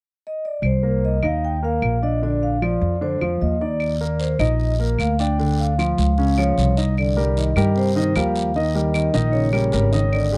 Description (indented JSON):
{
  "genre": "Afro-Cuban jazz",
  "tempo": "152 BPM",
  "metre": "4/4",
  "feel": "straight",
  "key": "C minor",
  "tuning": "A4 = 440 Hz",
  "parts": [
    { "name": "vibraphone with medium mallets", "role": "melody", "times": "0.3-10.4 s", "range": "C5 to G5", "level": "-27 LUFS", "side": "equal", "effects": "none" },
    { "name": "upright bass", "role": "bass", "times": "0.6-10.4 s", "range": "Ab1 to G2", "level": "-23 LUFS", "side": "equal", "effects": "none" },
    { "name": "claves", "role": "percussion", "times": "0.6-10.3 s", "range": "none", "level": "-32 LUFS", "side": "equal", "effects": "none" },
    { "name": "warm concert grand piano", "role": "accompaniment", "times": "0.8-10.4 s", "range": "Db3 to Eb5", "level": "-26 LUFS", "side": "equal", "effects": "none" },
    { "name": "guiro", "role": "percussion", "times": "3.8-10.4 s", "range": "none", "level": "-39 LUFS", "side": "equal", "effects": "none" },
    { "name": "breathy trombone", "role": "second line", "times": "6.4-10.4 s", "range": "C3 to F3", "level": "-30 LUFS", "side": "equal", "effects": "none" }
  ],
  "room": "small room ambience",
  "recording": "dry, close 1970s-style studio recording",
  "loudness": "-20 LUFS",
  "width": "mono",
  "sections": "0.6-7.0 A section; 7.0-10.4 B section",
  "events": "none",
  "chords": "0.0 N.C.; 0.6 Cm9; 2.2 Bbadd9; 3.8 Eb5; 5.4 Dmmaj7; 6.2 Db; 7.0 Cm9; 8.6 Eb7"
}